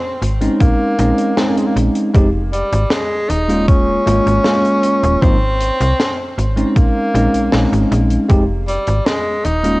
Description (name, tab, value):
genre	vaporwave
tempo	78 BPM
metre	4/4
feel	straight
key	Bb dorian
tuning	A4 = 441 Hz
part	bright tenor saxophone	melody	0.0-9.8 s	G3 to Eb4	-19 LUFS	equal	vintage 12-bit sampler grit, cassette tape, tape echo
part	slap-like FM bass	bass	0.2-9.8 s	Eb1 to C2	-17 LUFS	equal	none
part	tight funk drum kit	drums	0.2-9.8 s	hi-hat, snare drum	-22 LUFS	equal	vintage 12-bit sampler grit, cassette tape
part	bell-like tine electric piano	accompaniment	0.4-9.8 s	F3 to G4	-16 LUFS	equal	wide subtle chorus, cassette tape
part	electronic kick drum	drums	0.6-8.5 s	none	-12 LUFS	equal	overdrive, vintage 12-bit sampler grit, cassette tape
room	light reverb, small room ambience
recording	home recording on cassette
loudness	-12 LUFS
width	side -21 dB against mid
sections	0.0-9.8 A section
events	none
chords	0.0 Ab; 0.6 Bbm11; 2.1 Fm; 3.3 Eb9sus4; 5.2 Ab; 6.8 Bbm11; 8.3 Fm